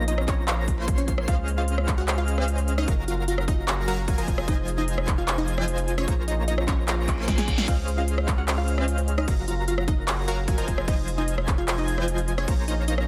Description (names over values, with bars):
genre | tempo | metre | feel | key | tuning
future bass | 150 BPM | 4/4 | half-time | Db major | A4 = 439 Hz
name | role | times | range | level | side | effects
unison pluck | melody | 0.0-13.1 s | Db4 to Bb5 | -35 LUFS | equal | sidechain pumping, delay
Celtic harp | arpeggios | 0.0-13.1 s | Bb3 to C5 | -41 LUFS | equal | none
airy dreamy lead | arpeggios | 0.0-13.1 s | F6 to C7 | -42 LUFS | equal | chorus, sidechain pumping
supersaw stab | riff | 0.0-13.1 s | F3 to C6 | -34 LUFS | equal | sidechain pumping
saturated sub bass | bass | 0.0-13.1 s | F1 to Db2 | -29 LUFS | equal | sidechain pumping
big-room dance drum kit | drums | 0.1-13.1 s | crash cymbal, handclaps, hi-hat, rim click, snare drum | -32 LUFS | equal | overdrive, studio reverb
electronic kick drum | drums | 0.3-12.6 s | none | -27 LUFS | equal | studio reverb
reverse cymbal | sound effects | 7.0-7.7 s | none | -36 LUFS | equal | none
room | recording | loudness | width
digital ambience | none | -25 LUFS | mono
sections
0.0-13.1 A section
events
reverse cymbal 7.0-7.7; drum fill 7.3-7.7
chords
0.0 Bbm9; 1.3 Dbmaj7; 2.9 Gbmaj9; 4.3 Fm7; 6.1 Bbm9; 7.7 Dbmaj7; 9.3 Gbmaj9; 10.7 Fm7; 12.5 Bbm9